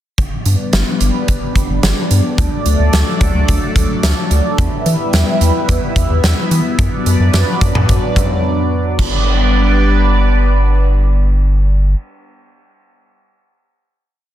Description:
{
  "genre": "synth-pop",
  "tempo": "109 BPM",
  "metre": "4/4",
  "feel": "straight",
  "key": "G major",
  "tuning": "A4 = 440 Hz",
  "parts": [
    { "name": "phased analog pad", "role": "sustained chords", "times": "0.2-11.9 s", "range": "F#3 to E5", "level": "-18 LUFS", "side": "equal", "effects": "phaser, chorus" },
    { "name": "rubbery square bass", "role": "bass", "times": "0.2-11.9 s", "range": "G1 to E3", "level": "-14 LUFS", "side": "equal", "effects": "none" },
    { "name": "huge arena drum kit", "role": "drums", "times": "0.2-9.1 s", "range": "crash cymbal, hi-hat, kick drum, snare drum, toms", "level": "-17 LUFS", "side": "equal", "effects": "none" }
  ],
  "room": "light reverb, studio ambience",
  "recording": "dense, heavily limited modern master",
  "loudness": "-12 LUFS",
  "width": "side -12 dB against mid",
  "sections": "0.2-9.0 verse; 9.0-11.2 final chord",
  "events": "break 8.4-9.0",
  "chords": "0.2 G; 2.4 D; 4.6 Em; 6.8 Bm/F#; 9.0 G"
}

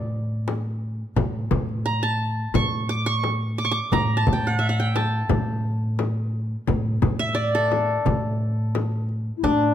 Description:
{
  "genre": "Turkish makam ensemble",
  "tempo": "87 BPM",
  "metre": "4/4",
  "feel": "straight",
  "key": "A makam hicaz",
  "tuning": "A4 = 439 Hz",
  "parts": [
    { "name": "qanun", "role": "melody", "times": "0.0-9.7 s", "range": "D4 to D6", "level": "-24 LUFS", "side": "right 1 dB", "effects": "none" },
    { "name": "upright bass", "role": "bass", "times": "0.0-9.7 s", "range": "A2", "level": "-25 LUFS", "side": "equal", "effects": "none" },
    { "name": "darbuka", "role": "percussion", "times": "0.5-9.2 s", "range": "none", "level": "-29 LUFS", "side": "right 4 dB", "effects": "none" },
    { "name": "frame drum", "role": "percussion", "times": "0.5-9.6 s", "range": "none", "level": "-28 LUFS", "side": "left 7 dB", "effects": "none" },
    { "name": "mellow bass bansuri", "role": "second line", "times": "9.4-9.7 s", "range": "D4 to E4", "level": "-25 LUFS", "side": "left 10 dB", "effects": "none" }
  ],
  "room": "light reverb",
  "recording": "close, detailed microphones",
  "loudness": "-21 LUFS",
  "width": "side -10 dB against mid",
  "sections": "0.0-9.4 A section",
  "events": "none",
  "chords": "none"
}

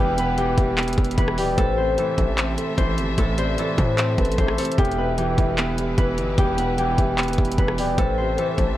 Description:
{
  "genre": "hip hop, trap",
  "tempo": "150 BPM",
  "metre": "4/4",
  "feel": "half-time",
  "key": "E minor",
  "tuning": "A4 = 440 Hz",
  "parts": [
    { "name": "concert harp", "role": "melody", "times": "0.0-8.8 s", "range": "G4 to C5", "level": "-26 LUFS", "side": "left 1 dB", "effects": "none" },
    { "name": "warm concert grand piano", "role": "accompaniment", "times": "0.0-8.8 s", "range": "E2 to C4", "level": "-26 LUFS", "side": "right 2 dB", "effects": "none" },
    { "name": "clear studio string section", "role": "sustained chords", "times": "0.0-8.8 s", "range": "E3 to E5", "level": "-32 LUFS", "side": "left 1 dB", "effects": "none" },
    { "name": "distorted 808-style bass", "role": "bass", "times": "0.0-8.8 s", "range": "D1 to A2", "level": "-26 LUFS", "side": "equal", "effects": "distortion" },
    { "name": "hollow clarinet-like synth lead", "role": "second line", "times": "0.2-8.8 s", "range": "A4 to F#5", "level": "-29 LUFS", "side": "left 4 dB", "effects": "chorus, ping-pong delay" },
    { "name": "trap drum kit", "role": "drums", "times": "0.2-8.7 s", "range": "handclaps, hi-hat, kick drum, rim click", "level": "-23 LUFS", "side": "equal", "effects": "none" }
  ],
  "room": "light reverb",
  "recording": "worn, warbling old tape, cassette tape, warbly pitch drift",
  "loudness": "-19 LUFS",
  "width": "side -14 dB against mid",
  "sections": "0.0-8.8 A section",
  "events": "none",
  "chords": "0.0 Em; 1.6 Am; 4.8 Em; 8.0 Am"
}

